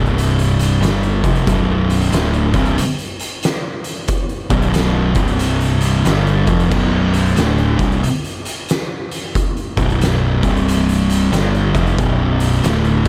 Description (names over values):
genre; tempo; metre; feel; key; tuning
stoner and doom metal; 91 BPM; 4/4; swing 64% on 8ths; unclear; A4 = 439 Hz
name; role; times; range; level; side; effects
thick fuzz guitar; riff; 0.0-13.1 s; B1 to G3; -20 LUFS; equal; distortion
thick fuzz guitar; riff; 0.0-13.1 s; B1 to G3; -22 LUFS; equal; distortion
growling picked electric bass; bass; 0.0-13.1 s; B0 to G1; -22 LUFS; equal; overdrive
oversized low-tuned drum kit; drums; 0.1-13.1 s; crash cymbal, hi-hat, kick drum, snare drum; -22 LUFS; equal; none
room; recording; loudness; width
moderate large studio reverb, RT60 1.3 s, small room reverb; none; -17 LUFS; mono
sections
0.0-13.1 A section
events
none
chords
0.0 C5; 0.8 Bm; 5.1 C5; 6.1 Bm; 10.3 C5; 11.3 Bm